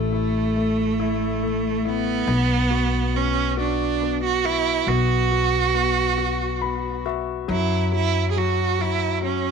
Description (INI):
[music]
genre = six-eight pop ballad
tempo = 46 BPM (dotted quarters)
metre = 6/8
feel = straight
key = unclear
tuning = A4 = 440 Hz
[part]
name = clear cello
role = melody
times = 0.0-9.5 s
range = A3 to G#4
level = -22 LUFS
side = right 9 dB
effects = none
[part]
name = warm concert grand piano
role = accompaniment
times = 0.0-9.5 s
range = F#3 to B5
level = -26 LUFS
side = left 14 dB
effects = none
[part]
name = upright bass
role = bass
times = 0.0-9.5 s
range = A1 to F#2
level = -25 LUFS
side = equal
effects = none
[sound]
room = moderate echo chamber reverb, RT60 1.6 s, small room ambience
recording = 1960s-style stereo with parts hard left and right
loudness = -20 LUFS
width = side -6 dB against mid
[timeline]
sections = 0.0-9.5 A section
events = grand piano fill 6.2-7.5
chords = 0.0 A5; 2.3 B5; 7.5 F#5